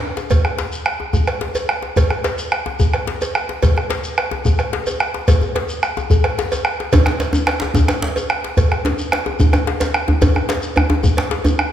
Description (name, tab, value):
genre	west african traditional, West African drum ensemble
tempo	145 BPM (dotted quarters)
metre	12/8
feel	straight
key	none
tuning	none
part	djembe	percussion	0.2-11.7 s	none	-23 LUFS	left 5 dB	none
part	shekere	percussion	0.2-11.6 s	none	-27 LUFS	left 2 dB	none
part	bombo	percussion	0.3-11.7 s	none	-18 LUFS	right 1 dB	none
part	cowbell	percussion	0.3-11.6 s	none	-24 LUFS	right 3 dB	none
part	djembe	percussion	6.9-11.6 s	none	-19 LUFS	equal	none
room	moderate scoring stage reverb, RT60 1.7 s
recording	none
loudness	-15 LUFS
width	side -10 dB against mid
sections	0.3-11.7 A section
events	none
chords	none